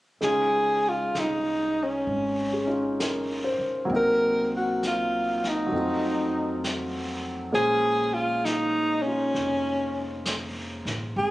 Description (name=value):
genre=jazz ballad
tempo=66 BPM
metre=4/4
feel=swing 66% on 8ths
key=Db major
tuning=A4 = 440 Hz
part: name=breathy alto saxophone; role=melody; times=0.2-11.3 s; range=Db4 to Bb4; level=-24 LUFS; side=equal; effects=none
part: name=clear upright piano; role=accompaniment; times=0.2-11.2 s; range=Gb3 to C5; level=-30 LUFS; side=equal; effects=none
part: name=upright bass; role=bass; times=0.2-11.3 s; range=F1 to F2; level=-38 LUFS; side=equal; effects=none
part: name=jazz brush drum kit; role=drums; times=0.2-11.3 s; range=brushed snare drum, hi-hat, snare drum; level=-35 LUFS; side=equal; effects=none
room=light reverb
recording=recorded on a phone in the room, studio ambience, compression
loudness=-23 LUFS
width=side -17 dB against mid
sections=0.2-11.3 A section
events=none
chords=0.2 Dbmaj9; 3.9 Cm7b5; 5.7 F7b9; 7.5 Bbm9